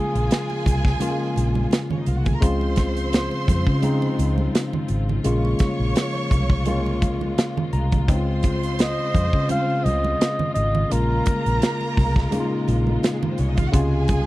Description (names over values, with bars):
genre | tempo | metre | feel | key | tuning
lush 1970s-style soul | 85 BPM | 4/4 | swing 54% on 16ths | unclear | A4 = 440 Hz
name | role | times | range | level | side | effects
breathy flugelhorn | melody | 0.0-1.0, 8.8-12.3 s | Ab4 to F5 | -26 LUFS | equal | none
warm studio violin section | second line | 0.0-14.3 s | Ab3 to Db6 | -31 LUFS | right 2 dB | none
barky tine electric piano | accompaniment | 0.0-14.3 s | C3 to Bb5 | -25 LUFS | left 2 dB | none
muted studio string section | sustained chords | 0.0-14.3 s | Bb2 to F4 | -34 LUFS | left 1 dB | none
vintage muted fingered electric bass | bass | 0.2-14.3 s | Ab1 to Db3 | -23 LUFS | equal | none
modern studio drum kit | drums | 0.2-14.3 s | hi-hat, kick drum, snare drum | -21 LUFS | equal | none
congas | percussion | 0.3-14.3 s | none | -30 LUFS | right 4 dB | none
room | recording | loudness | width
little or no reverb | dry, close 1970s-style studio recording | -19 LUFS | side -17 dB against mid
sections
0.0-14.3 A section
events
tine electric piano fill 7.0-8.1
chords
0.0 Bbm7; 2.4 Dbmaj7; 5.3 Bbm7; 8.1 Dbmaj7; 10.9 Bbm7; 13.7 Dbmaj7